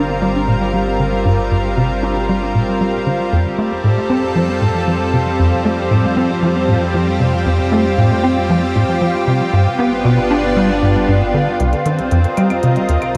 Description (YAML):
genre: ambient, sequencer-driven space music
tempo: 116 BPM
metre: 4/4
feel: straight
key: G minor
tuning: A4 = 440 Hz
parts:
  - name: lush unison pad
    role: sustained chords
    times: 0.0-13.2 s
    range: G3 to Eb5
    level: -19 LUFS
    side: equal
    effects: chorus
  - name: tight sequencer bass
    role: riff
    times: 0.0-13.2 s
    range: C2 to D4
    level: -18 LUFS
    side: equal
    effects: ensemble chorus, analog delay
  - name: analog drone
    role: bass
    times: 0.0-13.2 s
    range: G1 to F2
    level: -26 LUFS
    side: equal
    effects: chorus
  - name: electronic hi-hat and claves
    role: percussion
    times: 11.6-13.2 s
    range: none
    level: -34 LUFS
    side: equal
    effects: none
room: wet huge ambient reverb, RT60 7.6 s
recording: dark, warm production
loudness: -16 LUFS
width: mono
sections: 0.0-11.6 A section; 11.6-13.2 B section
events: filter sweep on analog synth bass 0.0-11.6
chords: 0.0 Gm; 3.3 Fadd9; 9.5 G7; 11.6 Cm